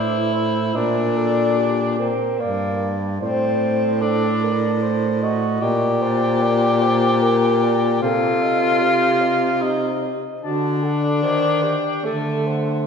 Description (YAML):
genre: classical, lyrical piece for single-reed quartet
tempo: 74 BPM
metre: 3/4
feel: rubato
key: G minor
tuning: A4 = 440 Hz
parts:
  - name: mellow clarinet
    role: melody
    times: 0.0-12.9 s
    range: Bb4 to A5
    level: -28 LUFS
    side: left 5 dB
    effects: none
  - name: mellow alto saxophone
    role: second line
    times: 0.0-12.9 s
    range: F#4 to Eb5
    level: -25 LUFS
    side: right 4 dB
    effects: none
  - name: warm tenor saxophone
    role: accompaniment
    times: 0.0-12.9 s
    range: A3 to G4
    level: -21 LUFS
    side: left 3 dB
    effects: none
  - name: clear baritone saxophone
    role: bass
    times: 0.0-12.9 s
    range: G2 to Eb3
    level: -22 LUFS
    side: right 1 dB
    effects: none
room: wet concert hall reverb, RT60 2.2 s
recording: heard from further back in the room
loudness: -17 LUFS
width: side -6 dB against mid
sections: 0.0-12.9 A section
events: none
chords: 0.0 Am; 0.8 Gm/Bb; 3.2 D5/A; 5.6 Gm/Bb; 8.0 Adim/C; 10.4 D; 11.2 Cm/Eb; 12.0 D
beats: | 0.75 1.58 2.39 | 3.21 4.02 4.81 | 5.61 6.41 7.21 | 8.03 8.81 9.61 | 10.43 11.23 12.05